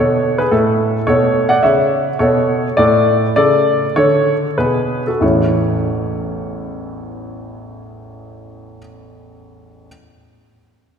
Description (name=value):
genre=classical-period piano sonatina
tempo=91-111 BPM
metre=4/4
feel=rubato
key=A major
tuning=A4 = 441 Hz
part: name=warm grand piano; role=solo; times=0.0-9.9 s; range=A1 to F#5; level=-14 LUFS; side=equal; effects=none
room=wet church reverb, RT60 2.8 s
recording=recorded in a church or concert hall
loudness=-13 LUFS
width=side -7 dB against mid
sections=0.0-5.2 A section; 5.2-7.7 B section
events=slowing down 0.0-5.2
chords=0.0 E (rootless); 0.5 A; 2.8 D5/A; 5.2 A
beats=| 0.53 1.08 1.63 2.20 | 2.77 3.36 3.95 4.57 | 5.22 5.84 6.47 7.09